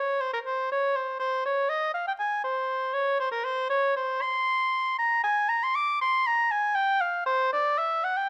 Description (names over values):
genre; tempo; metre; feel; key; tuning
classical, baroque-style fantasia for unaccompanied oboe; 119 BPM; 3/4; rubato; unclear; A4 = 439 Hz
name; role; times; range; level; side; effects
clear oboe; solo; 0.0-8.3 s; Bb4 to D6; -26 LUFS; equal; none
room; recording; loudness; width
moderate stone room reverb, RT60 1.2 s; close, detailed microphones, vinyl crackle; -26 LUFS; mono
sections
0.0-8.3 A section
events
none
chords
none